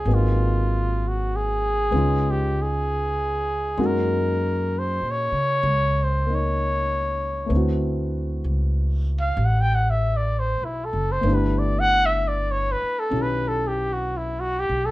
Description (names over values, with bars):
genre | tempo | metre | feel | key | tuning
jazz ballad | 64 BPM | 4/4 | swing 68% on 8ths | unclear | A4 = 440 Hz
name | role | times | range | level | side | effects
breathy trumpet | melody | 0.0-14.9 s | E4 to G5 | -24 LUFS | equal | none
warm upright piano | accompaniment | 0.0-14.9 s | Gb3 to Ab4 | -28 LUFS | left 2 dB | none
upright bass | bass | 0.0-14.9 s | F#1 to Db3 | -24 LUFS | equal | none
room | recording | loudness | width
moderate studio reverb, RT60 0.6 s | none | -20 LUFS | side -17 dB against mid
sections
0.0-14.9 A section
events
trumpet solo 0.0-14.9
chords
0.1 Abm9; 1.9 Db9; 3.8 Gb69; 7.5 D13; 11.2 G6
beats
| 0.06 0.99 1.92 2.85 | 3.78 4.71 5.64 6.57 | 7.50 8.44 9.37 10.31 | 11.24 12.18 13.11 14.05